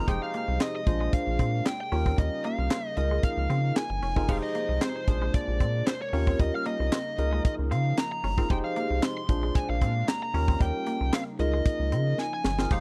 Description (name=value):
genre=early-eighties boogie funk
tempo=114 BPM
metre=4/4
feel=straight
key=unclear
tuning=A4 = 437 Hz
part: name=fuzz lead guitar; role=melody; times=0.0-12.8 s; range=C5 to C6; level=-34 LUFS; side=equal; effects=distortion, slapback echo
part: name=barky tine electric piano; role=accompaniment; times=0.0-12.8 s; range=Db4 to C5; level=-35 LUFS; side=equal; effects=phaser
part: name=warm analog pad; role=sustained chords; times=0.0-12.8 s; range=C3 to Eb4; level=-42 LUFS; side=equal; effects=chorus
part: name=twangy electric guitar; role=riff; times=0.0-12.8 s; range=G3 to Db4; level=-41 LUFS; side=equal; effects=lush chorus
part: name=rubbery square bass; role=bass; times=0.0-12.8 s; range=F1 to Db3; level=-30 LUFS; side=equal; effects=none
part: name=tight funk drum kit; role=drums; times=0.1-12.8 s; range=crash cymbal, handclaps, hi-hat, kick drum, snare drum, splash cymbal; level=-29 LUFS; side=equal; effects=none
room=small room ambience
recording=dry, close 1970s-style studio recording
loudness=-27 LUFS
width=mono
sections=0.0-4.3 A section; 4.3-12.8 A section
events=drum fill 12.2-12.7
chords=0.1 Fm7; 0.9 Bb9; 1.9 Eb7; 3.0 Db69; 4.3 Fm7; 5.1 Bb9; 6.1 Eb7; 7.2 Db69; 8.5 Fm7; 9.3 Bb9; 10.3 Eb7; 11.4 Db69